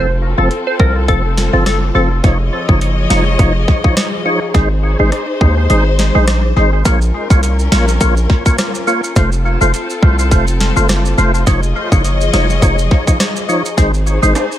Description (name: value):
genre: dancehall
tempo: 104 BPM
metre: 4/4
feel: swing 56% on 16ths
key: Bb minor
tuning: A4 = 438 Hz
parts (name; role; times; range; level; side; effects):
- glassy wavetable pluck; melody; 0.0-2.1 s; A4 to C5; -20 LUFS; left 1 dB; chorus, tape echo
- percussive tonewheel organ; accompaniment; 0.0-14.3 s; F3 to Db5; -17 LUFS; equal; chorus vibrato, slow rotary speaker, sidechain pumping, tape echo
- warm studio string section; sustained chords; 0.0-14.6 s; F3 to Eb5; -21 LUFS; left 3 dB; sidechain pumping
- hard-hitting 808-style bass; bass; 0.0-14.3 s; F1 to Eb2; -14 LUFS; equal; none
- island pop drum kit; drums; 0.5-14.5 s; hi-hat, kick drum, rim click, snare drum; -16 LUFS; equal; tape echo
- maracas and timbales; percussion; 6.9-14.6 s; none; -25 LUFS; right 6 dB; tape echo
room: little or no reverb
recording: echo-heavy mix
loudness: -11 LUFS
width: side -12 dB against mid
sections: 0.0-6.9 A section; 6.9-14.6 B section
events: kick muted 5.7-6.9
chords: 0.0 F; 2.2 Dbadd9/F; 4.5 Ab; 6.9 Bbm; 9.2 F; 11.5 Dbadd9/F; 13.8 Ab